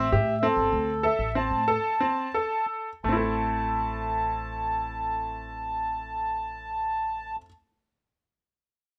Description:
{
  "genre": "contemporary instrumental, contemporary",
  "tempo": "83-102 BPM",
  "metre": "5/4",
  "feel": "straight",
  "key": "A minor",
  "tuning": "A4 = 441 Hz",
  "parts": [
    { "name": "mellow accordion", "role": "melody", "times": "0.0-7.4 s", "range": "A4 to A5", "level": "-30 LUFS", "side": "equal", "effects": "none" },
    { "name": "bright concert grand piano", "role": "arpeggios", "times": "0.0-7.5 s", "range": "A3 to A4", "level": "-32 LUFS", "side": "equal", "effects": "none" },
    { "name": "upright bass", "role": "bass", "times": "0.0-7.4 s", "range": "G1 to A2", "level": "-36 LUFS", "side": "equal", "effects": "none" }
  ],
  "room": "little or no reverb",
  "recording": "close, detailed microphones",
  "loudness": "-28 LUFS",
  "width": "mono",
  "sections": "0.0-3.0 A section; 3.0-6.7 B section",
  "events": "slowing down 0.0-3.0",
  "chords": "0.0 Am",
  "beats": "0.42 1.04 1.68 2.34 | 3.05 3.77 4.50 5.22 5.94"
}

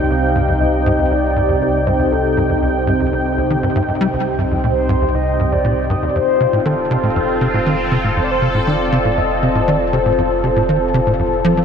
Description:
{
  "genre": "ambient, sequencer-driven space music",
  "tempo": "119 BPM",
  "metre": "4/4",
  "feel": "straight",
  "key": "C dorian",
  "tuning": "A4 = 438 Hz",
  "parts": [
    { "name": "mellow horn-like synth lead", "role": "melody", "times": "0.0-11.6 s", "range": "A4 to F5", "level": "-20 LUFS", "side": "left 1 dB", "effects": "wide subtle chorus, ping-pong delay" },
    { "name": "sweeping resonant pad", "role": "sustained chords", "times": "0.0-11.6 s", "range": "C3 to G5", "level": "-18 LUFS", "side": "equal", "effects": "chorus" },
    { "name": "tight sequencer bass", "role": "riff", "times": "0.0-11.6 s", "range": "C2 to G3", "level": "-19 LUFS", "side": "equal", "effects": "ensemble chorus, ping-pong delay" },
    { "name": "warm sub bass", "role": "bass", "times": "0.0-11.6 s", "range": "F1 to C2", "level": "-23 LUFS", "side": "equal", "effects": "none" }
  ],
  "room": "wet huge ambient reverb, RT60 8.6 s",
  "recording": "dreamy mix soaked in reverb",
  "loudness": "-14 LUFS",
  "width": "side -7 dB against mid",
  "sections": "0.0-11.6 A section",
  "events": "none",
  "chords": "0.0 Cm; 6.2 F",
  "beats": "| 0.10 0.60 1.11 1.61 | 2.12 2.62 3.12 3.63 | 4.13 4.64 5.14 5.65 | 6.15 6.65 7.16 7.66 | 8.17 8.67 9.18 9.68 | 10.18 10.69 11.19"
}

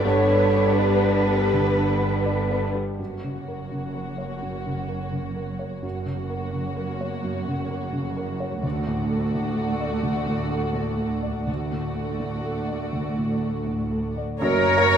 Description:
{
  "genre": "cinematic, emotional film score for orchestra",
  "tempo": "83 BPM",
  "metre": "4/4",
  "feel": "rubato",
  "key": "unclear",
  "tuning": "A4 = 443 Hz",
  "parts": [
    { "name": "muted symphonic violin section", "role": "melody", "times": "0.0-15.0 s", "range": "A#4 to D5", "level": "-37 LUFS", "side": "left 5 dB", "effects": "none" },
    { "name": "mellow hollow large flute ensemble", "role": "second line", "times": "0.0-2.6, 14.4-15.0 s", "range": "G4 to C#5", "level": "-27 LUFS", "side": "left 5 dB", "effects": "none" },
    { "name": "muted symphonic violin section", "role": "second line", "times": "0.0-15.0 s", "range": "B3 to C#5", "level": "-30 LUFS", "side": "left 2 dB", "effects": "none" },
    { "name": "dark baby grand piano", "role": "accompaniment", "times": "0.0-15.0 s", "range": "F#1 to D5", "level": "-28 LUFS", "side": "equal", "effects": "none" },
    { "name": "muted symphonic viola section", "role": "accompaniment", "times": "0.0-15.0 s", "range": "D3 to C#4", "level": "-32 LUFS", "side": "right 2 dB", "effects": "none" },
    { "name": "mellow French horn section", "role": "sustained chords", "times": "0.0-2.6, 14.4-15.0 s", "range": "F#3 to C#5", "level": "-29 LUFS", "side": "equal", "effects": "none" },
    { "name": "muted symphonic cello section", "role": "bass", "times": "0.0-15.0 s", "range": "D2 to B4", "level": "-29 LUFS", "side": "right 3 dB", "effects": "none" },
    { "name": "muted symphonic double bass section", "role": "bass", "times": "0.0-15.0 s", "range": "F#1 to F#2", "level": "-30 LUFS", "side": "right 3 dB", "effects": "none" },
    { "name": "clear oboe", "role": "second line", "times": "14.4-15.0 s", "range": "A#4", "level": "-25 LUFS", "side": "right 6 dB", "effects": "none" }
  ],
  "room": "wet concert hall reverb, RT60 2.1 s",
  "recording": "minimal, uncompressed stereo recording",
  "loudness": "-22 LUFS",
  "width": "side -8 dB against mid",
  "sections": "0.0-3.0 A section; 3.0-14.4 B section",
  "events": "none",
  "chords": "0.0 G; 3.0 F#; 8.6 D; 14.4 F#",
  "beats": "| 0.04 0.78 1.52 2.25 | 2.99 3.71 4.42 5.13 | 5.84 6.54 7.25 7.95 | 8.64 9.34 10.04 10.75 | 11.48 12.22 12.95 13.68 | 14.42"
}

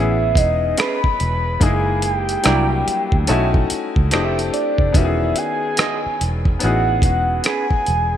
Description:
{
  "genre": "R&B, neo-soul",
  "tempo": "72 BPM",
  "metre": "4/4",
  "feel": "swing 64% on 16ths",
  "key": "unclear",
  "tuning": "A4 = 440 Hz",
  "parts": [
    { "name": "soft octave-layered synth lead", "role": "melody", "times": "0.0-8.2 s", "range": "D5 to B5", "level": "-21 LUFS", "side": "right 1 dB", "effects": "chorus, phaser" },
    { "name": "bright upright piano", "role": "accompaniment", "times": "0.0-8.2 s", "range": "D#3 to G#4", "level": "-23 LUFS", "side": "left 6 dB", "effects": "none" },
    { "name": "vintage muted fingered electric bass", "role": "bass", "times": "0.0-8.2 s", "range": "E1 to D2", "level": "-20 LUFS", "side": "equal", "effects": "none" },
    { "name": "dusty soul sampler-style drum kit", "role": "drums", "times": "0.4-8.1 s", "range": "hi-hat, kick drum, rim click", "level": "-19 LUFS", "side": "equal", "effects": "none" },
    { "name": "electric guitar through a small old amp", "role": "second line", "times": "0.8-7.7 s", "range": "C#4 to E5", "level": "-26 LUFS", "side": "right 6 dB", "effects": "none" }
  ],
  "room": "light reverb",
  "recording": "bright 1980s-style digital production",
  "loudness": "-16 LUFS",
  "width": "side -10 dB against mid",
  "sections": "0.0-8.2 A section",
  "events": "none",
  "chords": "0.0 Amaj9; 1.6 F#13; 2.4 C9; 3.3 B9sus4; 4.1 Fmaj9; 4.9 Emaj9; 6.6 Amaj9",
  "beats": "0.78 | 1.61 2.44 3.28 4.11 | 4.94 5.78 6.61 7.44"
}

